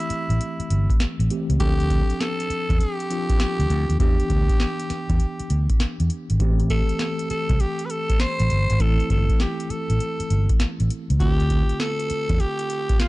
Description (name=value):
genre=R&B, new jack swing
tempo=100 BPM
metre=4/4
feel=swing 65% on 16ths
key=A minor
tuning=A4 = 440 Hz
part: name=growling tenor saxophone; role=melody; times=0.0-13.1 s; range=E4 to C5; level=-28 LUFS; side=equal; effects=none
part: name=mellow tine electric piano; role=accompaniment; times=0.0-13.1 s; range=D3 to A4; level=-29 LUFS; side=left 1 dB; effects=medium stereo tremolo
part: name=booming analog drum machine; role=drums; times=0.0-13.1 s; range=handclaps, hi-hat, kick drum, snare drum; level=-22 LUFS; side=equal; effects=none
part: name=fingered electric bass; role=bass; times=0.1-12.4 s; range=G1 to E2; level=-21 LUFS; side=equal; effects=none
room=digital ambience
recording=dark, warm production, nothing above 10.5 kHz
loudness=-20 LUFS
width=side -19 dB against mid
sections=0.0-13.1 A section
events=none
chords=0.0 Am7; 1.6 Dm7; 4.0 Em7; 6.4 Am7; 11.2 Dm7